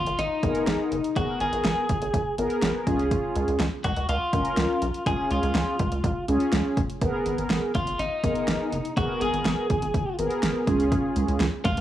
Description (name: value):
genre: synth-pop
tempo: 123 BPM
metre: 4/4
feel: straight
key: G# dorian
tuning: A4 = 440 Hz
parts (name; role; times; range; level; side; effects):
- twelve-string electric guitar; melody; 0.0-11.8 s; D#4 to G#4; -28 LUFS; left 2 dB; spring reverb, tape echo
- rubbery square bass; bass; 0.0-11.8 s; F#1 to C#2; -29 LUFS; right 1 dB; none
- deep house drum kit; drums; 0.1-11.8 s; hi-hat, kick drum, snare drum; -28 LUFS; equal; overdrive
- mellow synth brass; accompaniment; 0.4-11.5 s; B3 to A#4; -27 LUFS; equal; chorus
room: light reverb, digital ambience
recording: dry, gritty hardware recording, cassette tape, small room ambience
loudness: -23 LUFS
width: side -12 dB against mid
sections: 0.0-11.8 A section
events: none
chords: 0.0 G#madd9; 2.9 C#; 7.0 G#madd9; 10.7 C#